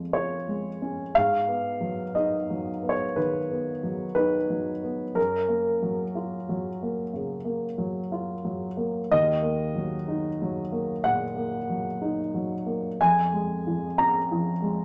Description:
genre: neoclassical minimalist piano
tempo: 61 BPM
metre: 4/4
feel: rubato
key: Eb minor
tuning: A4 = 437 Hz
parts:
  - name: dark baby grand piano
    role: solo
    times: 0.0-14.8 s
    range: Eb2 to Bb5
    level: -27 LUFS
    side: equal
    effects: none
room: moderate small room reverb, RT60 0.6 s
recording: none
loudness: -27 LUFS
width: mono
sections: 0.0-14.8 A section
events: none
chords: 0.0 Db/F; 1.1 Abm7; 5.2 Gbmaj7; 9.1 Ebm; 13.0 Db/F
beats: 0.13 | 1.14 2.14 3.17 4.17 | 5.17 6.17 7.16 8.14 | 9.12 10.08 11.04 12.00 | 12.98 13.97

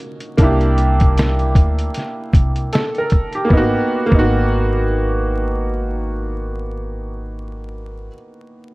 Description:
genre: lo-fi hip hop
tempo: 77 BPM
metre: 4/4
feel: swing 58% on 16ths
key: unclear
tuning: A4 = 439 Hz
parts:
  - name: bright upright piano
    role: accompaniment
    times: 0.0-8.7 s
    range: A#3 to Bb4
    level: -20 LUFS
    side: right 1 dB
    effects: cassette tape
  - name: lo-fi sampler-style drum kit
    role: drums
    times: 0.2-4.3 s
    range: hi-hat, kick drum, snare drum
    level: -15 LUFS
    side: equal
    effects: none
  - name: upright bass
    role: bass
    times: 0.4-8.1 s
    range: G#1 to D2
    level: -19 LUFS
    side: equal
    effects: none
room: little or no reverb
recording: dark, warm production, vinyl crackle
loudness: -15 LUFS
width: side -22 dB against mid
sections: 0.0-3.5 A section; 3.5-6.6 B section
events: none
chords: 0.4 C7; 3.5 G#m7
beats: | 0.39 1.17 1.94 2.72 | 3.50 4.28 5.06 5.84

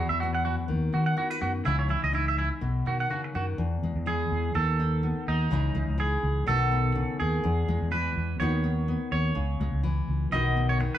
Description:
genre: highlife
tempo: 125 BPM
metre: 4/4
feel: swing 55% on 16ths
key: E major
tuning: A4 = 444 Hz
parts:
  - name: nylon-string guitar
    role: accompaniment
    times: 0.0-11.0 s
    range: E2 to F#4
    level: -31 LUFS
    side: left 3 dB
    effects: none
  - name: twangy electric guitar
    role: arpeggios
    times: 0.0-11.0 s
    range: D#4 to F#5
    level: -30 LUFS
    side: right 4 dB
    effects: spring reverb
  - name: fingered electric bass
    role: bass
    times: 0.0-10.9 s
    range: B1 to D#3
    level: -28 LUFS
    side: equal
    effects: none
room: wet studio reverb, RT60 0.7 s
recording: band playing live in one room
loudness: -25 LUFS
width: side -11 dB against mid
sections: 0.0-3.6 A section; 3.6-11.0 B section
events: clean electric guitar solo 3.6-11.0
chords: 0.0 Esus2; 0.7 B/D#; 1.7 C#madd9; 2.6 B; 3.6 E; 4.6 B/D#; 5.5 C#madd9; 6.5 B; 7.4 E; 8.4 B/D#; 9.4 C#m; 10.3 B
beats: 0.21 0.69 1.18 | 1.66 2.14 2.62 3.11 | 3.59 4.07 4.55 5.03 | 5.51 6.00 6.48 6.96 | 7.44 7.92 8.40 8.88 | 9.36 9.84 10.32 10.80

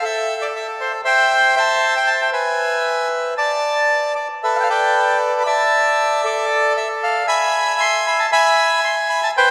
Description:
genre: tango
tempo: 116 BPM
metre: 4/4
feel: rubato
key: unclear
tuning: A4 = 441 Hz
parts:
  - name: bandoneon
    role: solo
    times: 0.0-9.5 s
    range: A4 to C6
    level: -17 LUFS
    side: equal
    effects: none
room: wet cathedral reverb, RT60 4.6 s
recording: recorded in a church or concert hall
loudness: -17 LUFS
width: mono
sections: 0.0-9.5 A section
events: none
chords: 0.0 Am7; 1.3 C6; 2.3 E; 3.4 Gadd9; 5.5 Dsus2; 7.5 E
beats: 0.29 0.80 | 1.31 1.83 2.35 2.87 | 3.39 3.91 4.43 4.95 | 5.47 5.98 6.50 7.01 | 7.53 8.05 8.56 9.08

